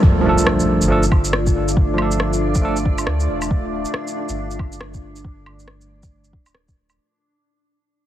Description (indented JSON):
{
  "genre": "future garage",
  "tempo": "138 BPM",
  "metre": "4/4",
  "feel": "swing 62% on 16ths",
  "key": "D minor",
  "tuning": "A4 = 441 Hz",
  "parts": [
    { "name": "barky tine electric piano", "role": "accompaniment", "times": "0.0-2.8 s", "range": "F3 to A4", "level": "-20 LUFS", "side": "right 2 dB", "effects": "sidechain pumping, analog delay" },
    { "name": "deep dark ambient pad", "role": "sustained chords", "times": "0.0-6.9 s", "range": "A3 to D5", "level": "-24 LUFS", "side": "left 1 dB", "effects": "chorus, built-in reverb, sidechain pumping" },
    { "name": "warm sub bass", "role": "bass", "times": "0.0-7.0 s", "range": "D1 to D2", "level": "-24 LUFS", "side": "equal", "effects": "sidechain pumping" },
    { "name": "electronic kick drum", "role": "drums", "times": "0.0-6.8 s", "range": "none", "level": "-16 LUFS", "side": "equal", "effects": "none" },
    { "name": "impact", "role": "sound effects", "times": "0.0-1.8 s", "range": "none", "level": "-23 LUFS", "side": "equal", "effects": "none" },
    { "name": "backwards swelling texture", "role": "texture", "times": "1.1-7.0 s", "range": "D4", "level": "-34 LUFS", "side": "equal", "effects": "built-in reverb" },
    { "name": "electronic shaker, rim click and woodblock", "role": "drums", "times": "0.4-7.0 s", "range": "none", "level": "-24 LUFS", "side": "equal", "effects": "none" }
  ],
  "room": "light reverb",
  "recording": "heavily compressed radio sound, vinyl crackle",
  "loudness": "-16 LUFS",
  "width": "side -12 dB against mid",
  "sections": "0.0-7.0 A section",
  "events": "fade-out 0.0-7.0; impact 0.0-1.8; filter sweep on sub bass 0.0-7.0",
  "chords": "0.0 Dm"
}